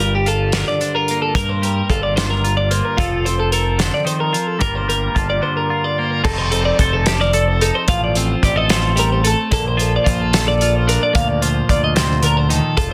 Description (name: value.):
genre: math rock and midwest emo.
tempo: 74 BPM (dotted quarters).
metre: 6/8.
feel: straight.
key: unclear.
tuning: A4 = 440 Hz.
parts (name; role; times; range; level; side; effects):
twelve-string electric guitar; accompaniment; 0.0-12.9 s; G2 to Bb4; -24 LUFS; equal; phaser.
twelve-string electric guitar; arpeggios; 0.0-12.9 s; F4 to F5; -22 LUFS; equal; spring reverb.
growling fingered electric bass; bass; 0.0-12.9 s; F1 to G2; -22 LUFS; equal; overdrive.
loose indie drum kit; drums; 0.3-12.9 s; crash cymbal, hi-hat, kick drum, snare drum; -23 LUFS; equal; soft clipping on kick.
room: light reverb.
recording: dense, heavily limited modern master.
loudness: -17 LUFS.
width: mono.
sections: 0.0-6.3 A section; 6.3-12.9 B section.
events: none.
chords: 0.0 Gm7; 3.0 F7; 4.6 Gm7; 6.3 F7; 9.5 Bbmaj7.